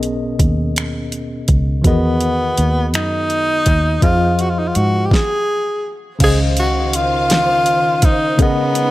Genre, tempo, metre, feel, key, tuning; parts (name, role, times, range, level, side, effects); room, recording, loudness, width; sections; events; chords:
slow six-eight R&B; 55 BPM (dotted quarters); 6/8; straight; Db major; A4 = 440 Hz
tine electric piano; accompaniment; 0.0-8.9 s; Cb3 to F5; -21 LUFS; left 1 dB; overdrive, fast stereo tremolo
vintage muted fingered electric bass; bass; 0.0-8.9 s; Cb2 to Ab2; -19 LUFS; equal
smooth R&B drum kit; drums; 0.0-8.9 s; crash cymbal, finger snaps, hi-hat, kick drum, snare drum; -16 LUFS; equal
breathy tenor saxophone; melody; 1.9-8.9 s; Cb4 to Ab4; -17 LUFS; equal
warm studio string section; sustained chords; 6.2-8.9 s; Db3 to F5; -24 LUFS; equal
light reverb, digital ambience; -14 LUFS; side -16 dB against mid
0.0-6.2 A section; 6.2-8.9 B section
stop 5.1-6.2
0.0 Cbmaj13; 1.8 Emaj9#11; 4.0 Fm7; 6.2 Dbmaj9; 8.4 Cbmaj13